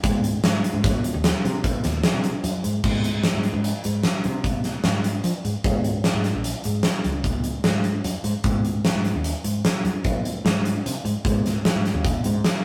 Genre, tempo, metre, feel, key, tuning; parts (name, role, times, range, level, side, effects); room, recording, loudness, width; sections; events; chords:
progressive instrumental, band music in an uneven meter; 150 BPM; 7/4; straight; Ab mixolydian; A4 = 440 Hz
woody fretless electric bass; bass; 0.0-12.4 s; Bb1 to F3; -28 LUFS; equal
huge arena drum kit; drums; 0.0-12.5 s; crash cymbal, hi-hat, kick drum, snare drum; -25 LUFS; equal
moderate studio reverb, RT60 0.6 s; rough rehearsal-room recording; -23 LUFS; mono
0.0-2.8 A section; 2.8-12.6 B section